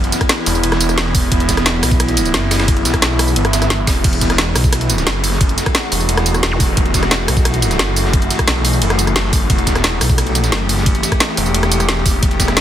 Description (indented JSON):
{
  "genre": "dark technical drum and bass",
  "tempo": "176 BPM",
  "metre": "4/4",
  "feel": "straight",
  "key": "E minor",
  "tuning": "A4 = 440 Hz",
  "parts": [
    { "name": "metallic inharmonic drone", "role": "sustained chords", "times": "0.0-12.6 s", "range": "E3 to G4", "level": "-20 LUFS", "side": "left 1 dB", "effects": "chorus, built-in reverb, sidechain pumping" },
    { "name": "snarling distorted saw bass", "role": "bass", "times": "0.0-12.6 s", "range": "E1 to B1", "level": "-18 LUFS", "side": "equal", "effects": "distortion, overdrive, sidechain pumping" },
    { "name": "drum and bass drum kit", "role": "drums", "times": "0.0-12.6 s", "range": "crash cymbal, hi-hat, rim click, snare drum, tambourine", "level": "-18 LUFS", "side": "equal", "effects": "overdrive, small room ambience" },
    { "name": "breakbeat sampler-style drum kit", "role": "drums", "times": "0.1-12.6 s", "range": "ride cymbal, snare drum", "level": "-24 LUFS", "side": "right 1 dB", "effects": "high-pass filter on cymbals, small room ambience, high-pass filter on snare, high-pass filter on room" },
    { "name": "electronic kick drum", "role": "drums", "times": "0.2-12.5 s", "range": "none", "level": "-16 LUFS", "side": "equal", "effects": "overdrive, small room ambience" },
    { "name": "swell and zap", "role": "sound effects", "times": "3.5-4.0, 6.5-6.6 s", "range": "none", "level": "-26 LUFS", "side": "right 2 dB", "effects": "none" }
  ],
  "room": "light reverb",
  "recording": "dense, heavily limited modern master",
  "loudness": "-12 LUFS",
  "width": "side -11 dB against mid",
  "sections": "0.0-12.6 A section",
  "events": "swell 3.5-4.0",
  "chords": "0.0 Em"
}